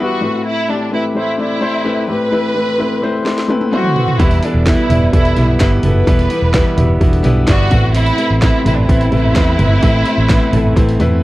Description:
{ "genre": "piano-driven pop", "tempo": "128 BPM", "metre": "4/4", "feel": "straight", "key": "unclear", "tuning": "A4 = 440 Hz", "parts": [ { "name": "warm studio violin section", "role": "melody", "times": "0.0-11.2 s", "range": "D4 to B4", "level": "-19 LUFS", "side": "equal", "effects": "none" }, { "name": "felt-muted upright piano", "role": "accompaniment", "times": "0.0-11.2 s", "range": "A2 to D5", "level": "-18 LUFS", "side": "left 2 dB", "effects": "none" }, { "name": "house drum kit", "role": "drums", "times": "3.3-11.1 s", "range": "hi-hat, kick drum, snare drum, toms", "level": "-16 LUFS", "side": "right 1 dB", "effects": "none" }, { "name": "mellow French horn section", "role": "second line", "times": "4.2-11.2 s", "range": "B2 to D4", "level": "-23 LUFS", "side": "right 1 dB", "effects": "none" }, { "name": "direct-recorded clean electric guitar", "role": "riff", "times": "4.2-11.2 s", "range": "E2 to E4", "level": "-23 LUFS", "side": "right 3 dB", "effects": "none" }, { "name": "vintage muted fingered electric bass", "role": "bass", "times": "4.2-11.2 s", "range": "E1 to E2", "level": "-14 LUFS", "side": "equal", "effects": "none" }, { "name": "group handclap", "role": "percussion", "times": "4.7-10.4 s", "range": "none", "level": "-31 LUFS", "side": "left 1 dB", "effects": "none" } ], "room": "light reverb", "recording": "worn, warbling old tape, cassette tape, warbly pitch drift", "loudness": "-11 LUFS", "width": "side -17 dB against mid", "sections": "0.0-11.2 A section", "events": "drum fill 3.3-4.2", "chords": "0.2 Amadd9; 4.2 Em; 7.7 Amadd9" }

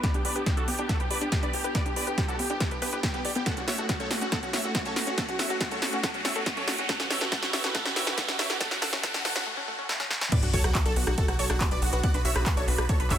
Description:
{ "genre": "uplifting trance", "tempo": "140 BPM", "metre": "4/4", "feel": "straight", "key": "B minor", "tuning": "A4 = 442 Hz", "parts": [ { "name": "big supersaw lead", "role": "melody", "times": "0.0-13.2 s", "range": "B3 to F#5", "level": "-32 LUFS", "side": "right 1 dB", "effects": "phaser, sidechain pumping, low-pass filter, digital delay" }, { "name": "muted studio string section", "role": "sustained chords", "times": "0.0-13.2 s", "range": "E3 to B4", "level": "-37 LUFS", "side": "equal", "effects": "sidechain pumping" }, { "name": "wide unison pluck", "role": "arpeggios", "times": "0.0-13.1 s", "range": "A3 to D5", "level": "-37 LUFS", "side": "left 3 dB", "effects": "sidechain pumping, digital delay" }, { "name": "big-room dance drum kit", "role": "drums", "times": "0.0-13.2 s", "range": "crash cymbal, handclaps, hi-hat, rim click, snare drum", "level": "-30 LUFS", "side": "equal", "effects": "none" }, { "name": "electronic kick drum", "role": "drums", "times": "0.0-13.2 s", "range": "none", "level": "-28 LUFS", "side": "equal", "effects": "none" }, { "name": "riser and sub drop", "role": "sound effects", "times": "0.7-12.0 s", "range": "none", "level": "-35 LUFS", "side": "right 1 dB", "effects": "none" }, { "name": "tight sequencer bass", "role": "bass", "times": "0.1-13.2 s", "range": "E1 to G2", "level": "-34 LUFS", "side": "equal", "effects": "none" }, { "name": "analog pluck", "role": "second line", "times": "10.3-13.2 s", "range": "F#4 to F#5", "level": "-35 LUFS", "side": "equal", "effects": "chorus, cassette tape, sidechain pumping, digital delay" } ], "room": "light reverb", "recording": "dense, heavily limited modern master, high-pass filter", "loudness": "-25 LUFS", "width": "side -10 dB against mid", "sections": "0.0-10.3 A section; 10.3-13.2 B section", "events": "build-up 0.0-10.3; drum fill 0.0-9.5, 9.9-10.3; filter sweep 0.0-10.3; riser 0.7-9.5; drop 10.3-13.2; impact 10.3-12.0", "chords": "0.0 G; 3.5 F#m; 6.9 Emadd9; 10.3 Bm" }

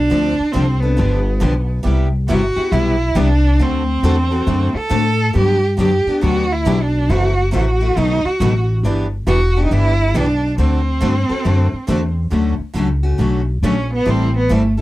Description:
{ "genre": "acoustic string swing (jazz manouche)", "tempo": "138 BPM", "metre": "4/4", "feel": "swing 63% on 8ths", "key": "unclear", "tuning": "A4 = 442 Hz", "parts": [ { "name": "clear cello", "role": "melody", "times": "0.0-14.8 s", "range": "A3 to A4", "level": "-19 LUFS", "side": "right 2 dB", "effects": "none" }, { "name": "upright bass", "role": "bass", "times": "0.0-14.8 s", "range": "E1 to A2", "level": "-17 LUFS", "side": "equal", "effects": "none" }, { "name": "picked steel-string acoustic guitar", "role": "accompaniment", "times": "0.1-14.8 s", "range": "B2 to A4", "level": "-22 LUFS", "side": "left 4 dB", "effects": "none" }, { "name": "picked steel-string acoustic guitar", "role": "accompaniment", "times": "0.1-14.6 s", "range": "B2 to B4", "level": "-24 LUFS", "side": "right 4 dB", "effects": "none" } ], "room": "little or no reverb", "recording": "dry, close 1970s-style studio recording", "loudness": "-14 LUFS", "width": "side -16 dB against mid", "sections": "0.0-12.3 A section; 12.3-14.8 B section", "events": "cello solo 12.3-14.8", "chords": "0.1 Dm7; 1.0 G7; 1.9 Cmaj7; 3.6 D7; 5.3 Gmaj7; 7.1 F#m7b5; 8.0 B7; 8.8 Em7; 10.6 D7; 12.3 Dmaj7; 14.1 Am7" }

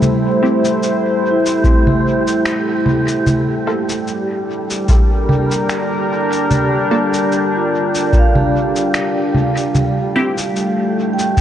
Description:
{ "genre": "ambient dub", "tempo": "74 BPM", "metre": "4/4", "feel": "swing 55% on 16ths", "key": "G dorian", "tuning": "A4 = 437 Hz", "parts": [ { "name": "deep dark ambient pad", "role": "sustained chords", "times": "0.0-11.4 s", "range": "G3 to C5", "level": "-17 LUFS", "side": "left 1 dB", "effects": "chorus, built-in reverb" }, { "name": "vibraphone with soft mallets", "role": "arpeggios", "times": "0.0-11.4 s", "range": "G3 to G5", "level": "-22 LUFS", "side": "right 2 dB", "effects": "dub echo" }, { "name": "electronic congas, cabasa and finger snaps", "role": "drums", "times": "0.0-11.4 s", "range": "none", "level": "-19 LUFS", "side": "right 1 dB", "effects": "dub echo" }, { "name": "wind-like tuned noise texture", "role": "texture", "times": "0.0-11.4 s", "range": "G4", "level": "-25 LUFS", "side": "right 2 dB", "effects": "built-in reverb" }, { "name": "filtered dub chord stab", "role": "stabs", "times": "0.4-10.4 s", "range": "Bb3 to A4", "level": "-22 LUFS", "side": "equal", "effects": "phaser, analog chorus, dub echo" }, { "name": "electronic kick drum", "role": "drums", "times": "1.6-11.4 s", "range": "none", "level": "-13 LUFS", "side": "equal", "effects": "none" } ], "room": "light reverb, digital ambience", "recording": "vinyl crackle, nothing above 10.5 kHz", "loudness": "-13 LUFS", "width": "side -10 dB against mid", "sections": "0.0-11.4 A section", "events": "none", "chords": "0.0 Am7; 3.3 Gm9; 9.8 Am7" }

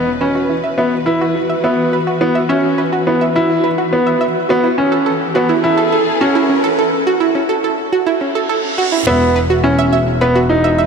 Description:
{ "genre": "piano and strings electronica", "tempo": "105 BPM", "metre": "4/4", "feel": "straight", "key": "E major", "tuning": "A4 = 441 Hz", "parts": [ { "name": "warm symphonic string section", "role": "sustained chords", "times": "0.0-10.9 s", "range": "E3 to D#5", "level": "-22 LUFS", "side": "left 1 dB", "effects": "none" }, { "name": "bright upright piano", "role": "riff", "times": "0.0-10.8 s", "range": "B3 to E4", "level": "-15 LUFS", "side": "equal", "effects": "digital delay" }, { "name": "riser and reverse cymbal", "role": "sound effects", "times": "1.5-9.1 s", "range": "none", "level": "-26 LUFS", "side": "right 1 dB", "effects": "none" }, { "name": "analog pluck", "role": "arpeggios", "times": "0.2-10.9 s", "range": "C#4 to E5", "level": "-17 LUFS", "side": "right 4 dB", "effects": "chorus, digital delay" }, { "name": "clear studio double bass section", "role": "bass", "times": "9.1-10.9 s", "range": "E1", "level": "-19 LUFS", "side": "left 1 dB", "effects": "none" } ], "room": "wet huge ambient reverb, RT60 3.7 s", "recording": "none", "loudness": "-12 LUFS", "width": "side -6 dB against mid", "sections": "0.0-9.1 A section; 9.1-10.9 B section", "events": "build-up 0.0-9.1; break 6.8-9.1; reverse cymbal 8.2-9.1; drop 9.1-10.9", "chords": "0.0 Esus2; 4.5 F#m7/E; 9.1 Esus2" }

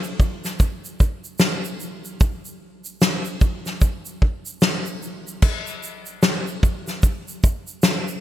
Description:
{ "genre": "pop", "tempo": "75 BPM", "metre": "4/4", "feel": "swing 60% on 16ths", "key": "none", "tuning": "none", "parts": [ { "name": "natural country drum kit", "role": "drums", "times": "0.0-8.2 s", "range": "crash cymbal, kick drum, shaker, snare drum", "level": "-20 LUFS", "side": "equal", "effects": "gated reverb" } ], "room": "light reverb", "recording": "bright 1980s-style digital production, faint mains hum", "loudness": "-20 LUFS", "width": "side -13 dB against mid", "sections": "0.0-5.4 A section; 5.4-8.2 A section", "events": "none", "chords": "none" }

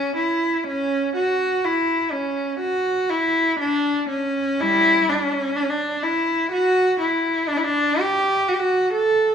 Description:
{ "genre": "classical, baroque-style suite movement for unaccompanied cello", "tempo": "62 BPM", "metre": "4/4", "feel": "rubato", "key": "unclear", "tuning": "A4 = 439 Hz", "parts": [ { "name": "warm cello", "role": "solo", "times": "0.0-9.3 s", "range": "G3 to A4", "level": "-18 LUFS", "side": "equal", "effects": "none" } ], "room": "moderate recital hall reverb, RT60 1.7 s", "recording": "minimal, uncompressed stereo recording", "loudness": "-18 LUFS", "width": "side -7 dB against mid", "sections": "0.0-9.3 A section", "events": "none", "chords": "none" }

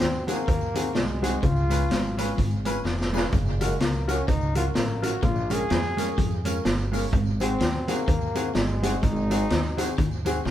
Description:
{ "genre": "ska", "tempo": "126 BPM", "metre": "4/4", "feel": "swing 59% on 8ths", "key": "unclear", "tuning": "A4 = 437 Hz", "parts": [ { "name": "bright trombone", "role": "melody", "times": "0.0-10.0 s", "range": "Ab3 to Ab4", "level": "-30 LUFS", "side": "left 1 dB", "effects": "none" }, { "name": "electric guitar at the edge of break-up", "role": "riff", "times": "0.0-10.5 s", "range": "F2 to F3", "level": "-35 LUFS", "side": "left 9 dB", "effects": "spring reverb, tape echo" }, { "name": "upright bass", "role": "bass", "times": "0.0-10.5 s", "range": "F1 to F2", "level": "-28 LUFS", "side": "right 1 dB", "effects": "none" }, { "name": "street-band drum kit", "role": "drums", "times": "0.0-10.5 s", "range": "hi-hat, kick drum, snare drum", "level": "-26 LUFS", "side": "equal", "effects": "tape echo" }, { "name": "mellow electric guitar", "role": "accompaniment", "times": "0.3-10.4 s", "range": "Gb3 to Bb4", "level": "-34 LUFS", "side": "right 3 dB", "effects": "spring reverb" }, { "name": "clear upright piano", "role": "stabs", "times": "0.3-10.4 s", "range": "C4 to Cb5", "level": "-31 LUFS", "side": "left 2 dB", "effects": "none" }, { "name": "tambourine", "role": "percussion", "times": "0.3-10.3 s", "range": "none", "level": "-45 LUFS", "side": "right 5 dB", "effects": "tape echo" } ], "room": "light reverb", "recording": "band playing live in one room", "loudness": "-22 LUFS", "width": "side -12 dB against mid", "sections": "0.0-10.5 A section", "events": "drum fill 2.9-3.3", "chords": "0.0 Ab7; 1.4 Db7; 3.3 Gbmaj7; 5.2 Bbm7; 7.1 Ab7" }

